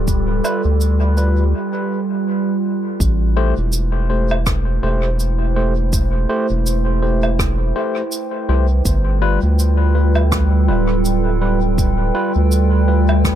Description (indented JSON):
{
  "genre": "ambient dub",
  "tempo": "82 BPM",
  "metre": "4/4",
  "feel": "swing 57% on 16ths",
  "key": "A minor",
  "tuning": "A4 = 439 Hz",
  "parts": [
    { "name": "warbly tape-like pad", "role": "sustained chords", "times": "0.0-13.4 s", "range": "G3 to G5", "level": "-21 LUFS", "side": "right 3 dB", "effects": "chorus, built-in reverb" },
    { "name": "round analog bass", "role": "bass", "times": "0.0-13.4 s", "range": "D1 to D2", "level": "-16 LUFS", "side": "equal", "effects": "none" },
    { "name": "wind-like tuned noise texture", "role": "texture", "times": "0.0-1.5 s", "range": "G4", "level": "-34 LUFS", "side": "right 5 dB", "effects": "built-in reverb" },
    { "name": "cabasa, woodblock and rim click", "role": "drums", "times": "0.1-13.4 s", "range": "none", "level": "-26 LUFS", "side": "right 1 dB", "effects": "dub echo" },
    { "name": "electronic kick drum", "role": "drums", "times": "0.1-13.4 s", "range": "none", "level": "-20 LUFS", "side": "equal", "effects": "none" },
    { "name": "overdriven tine electric piano", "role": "stabs", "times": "0.4-13.1 s", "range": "G3 to C5", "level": "-24 LUFS", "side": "moving between left 8 dB and right 2 dB", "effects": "auto-pan, dub echo" }
  ],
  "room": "studio reverb",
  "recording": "echo-heavy mix",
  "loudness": "-15 LUFS",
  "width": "side -11 dB against mid",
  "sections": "0.0-3.0 A section; 3.0-13.4 B section",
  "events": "break 1.5-3.0",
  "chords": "0.0 G7; 3.0 Am7; 8.9 G7",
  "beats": "| 0.08 0.81 1.54 2.27 | 3.00 3.73 4.47 5.20 | 5.93 6.66 7.39 8.12 | 8.86 9.59 10.32 11.05 | 11.78 12.52 13.25"
}